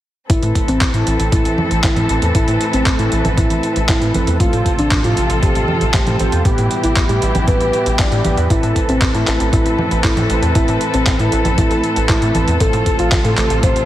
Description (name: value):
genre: italo disco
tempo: 117 BPM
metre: 4/4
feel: straight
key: A minor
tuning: A4 = 440 Hz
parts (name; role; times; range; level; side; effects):
- soft octave-layered synth lead; melody; 0.3-13.9 s; C4 to D5; -20 LUFS; equal; chorus, vintage 12-bit sampler grit, tape echo
- muted chamber string section; sustained chords; 0.3-13.9 s; B2 to B4; -21 LUFS; left 1 dB; none
- mellow synth brass; stabs; 0.3-13.9 s; A2 to C5; -24 LUFS; right 2 dB; chorus
- tight sequencer bass; bass; 0.3-13.9 s; A1 to A2; -19 LUFS; equal; none
- dusty soul sampler-style drum kit; drums; 0.3-13.9 s; congas, handclaps, hi-hat; -21 LUFS; right 1 dB; overdrive, small room ambience
- electronic kick drum; drums; 0.3-13.7 s; none; -17 LUFS; equal; overdrive, small room ambience
room: light reverb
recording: heavily compressed radio sound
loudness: -13 LUFS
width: side -13 dB against mid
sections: 0.3-13.9 A section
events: none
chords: 0.3 Amadd9; 4.4 F/A; 6.5 Em/A; 8.5 Amadd9; 12.6 F/A